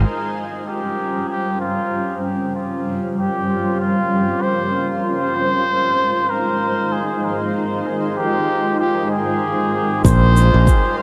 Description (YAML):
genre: ambient dub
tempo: 96 BPM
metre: 4/4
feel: swing 58% on 16ths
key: Bb dorian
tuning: A4 = 437 Hz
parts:
  - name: granular cloud pad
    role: sustained chords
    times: 0.0-11.0 s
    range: G3 to C5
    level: -23 LUFS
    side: equal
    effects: built-in reverb
  - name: modern bright fingered electric bass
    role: bass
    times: 0.0, 10.0-10.7 s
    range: Bb1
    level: -14 LUFS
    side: equal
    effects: none
  - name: trumpet with cup mute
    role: melody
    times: 0.7-11.0 s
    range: F4 to C5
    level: -23 LUFS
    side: equal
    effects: dub echo
  - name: electronic kick drum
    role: drums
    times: 10.0-10.8 s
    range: none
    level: -18 LUFS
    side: equal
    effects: overdrive
  - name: shaker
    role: drums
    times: 10.1-10.8 s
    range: none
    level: -37 LUFS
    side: equal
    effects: low-pass filter on snare, low-pass filter on perc, low-pass filter on room, dub echo
room: moderate echo chamber reverb, RT60 1.9 s, small room ambience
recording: none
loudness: -19 LUFS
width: mono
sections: 0.0-10.0 A section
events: none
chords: 0.0 Bbm69; 5.0 Ab69; 10.0 Bbm69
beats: | 0.05 0.67 1.30 1.92 | 2.55 3.17 3.80 4.42 | 5.05 5.67 6.30 6.92 | 7.55 8.17 8.80 9.42 | 10.05 10.67